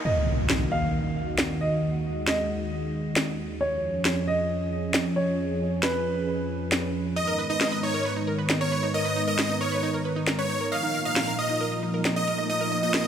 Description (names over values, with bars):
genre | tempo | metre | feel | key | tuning
uplifting trance | 135 BPM | 4/4 | straight | Eb minor | A4 = 440 Hz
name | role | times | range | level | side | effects
dark baby grand piano | second line | 0.1-7.1 s | Cb5 to F5 | -30 LUFS | right 1 dB | digital delay
lush unison pad | sustained chords | 0.1-13.1 s | Eb2 to Bb4 | -28 LUFS | equal | chorus
impact and riser | sound effects | 0.1-1.8, 11.7-13.1 s | none | -31 LUFS | equal | none
electronic snare drum | drums | 0.5-13.0 s | none | -28 LUFS | equal | none
supersaw chords | melody | 7.2-13.1 s | Db5 to F5 | -27 LUFS | equal | digital delay
analog pluck | arpeggios | 7.2-13.1 s | Eb4 to Eb5 | -33 LUFS | right 4 dB | chorus, digital delay
room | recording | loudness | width
moderate huge ambient reverb, RT60 6.0 s | none | -24 LUFS | side -8 dB against mid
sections
0.1-13.1 A section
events
impact 0.1-1.8; filter sweep on analog synth pad 0.1-13.1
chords
0.1 Ebm; 3.6 Db/F; 7.2 Abmadd9; 10.7 Bbsus4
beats
| 0.05 0.50 0.94 1.39 | 1.83 2.27 2.72 3.16 | 3.61 4.05 4.50 4.94 | 5.38 5.83 6.27 6.72 | 7.16 7.61 8.05 8.50 | 8.94 9.38 9.83 10.27 | 10.72 11.16 11.61 12.05 | 12.50 12.94